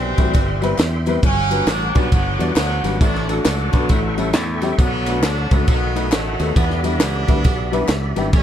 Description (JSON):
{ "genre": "uptempo gospel", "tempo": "135 BPM", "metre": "4/4", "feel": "swing 63% on 8ths", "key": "unclear", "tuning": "A4 = 435 Hz", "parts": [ { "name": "clear horn section", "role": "melody", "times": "0.0-8.4 s", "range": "D3 to D4", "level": "-24 LUFS", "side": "right 1 dB", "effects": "slapback echo" }, { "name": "warm grand piano", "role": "accompaniment", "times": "0.0-8.4 s", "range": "G2 to D5", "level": "-24 LUFS", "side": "left 3 dB", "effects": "none" }, { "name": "bright tonewheel organ", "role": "sustained chords", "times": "0.0-8.4 s", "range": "G4 to D6", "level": "-30 LUFS", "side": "equal", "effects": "slow rotary speaker, chorus vibrato" }, { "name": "modern bright fingered electric bass", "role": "bass", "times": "0.0-8.4 s", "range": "G1 to E2", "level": "-22 LUFS", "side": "equal", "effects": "none" }, { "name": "crisp fusion drum kit", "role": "drums", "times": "0.2-8.4 s", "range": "kick drum, ride cymbal, snare drum", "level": "-19 LUFS", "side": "equal", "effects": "none" }, { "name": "tambourine and handclaps", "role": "percussion", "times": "0.2-8.4 s", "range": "none", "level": "-32 LUFS", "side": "left 3 dB", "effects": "none" } ], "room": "little or no reverb", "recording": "dark, warm production", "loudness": "-16 LUFS", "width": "side -10 dB against mid", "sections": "0.0-8.4 A section", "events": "none", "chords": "0.0 Cmaj7; 1.2 Gmaj7; 3.0 D/A; 3.9 A7; 4.8 Bm7; 5.7 B7; 6.6 Em7" }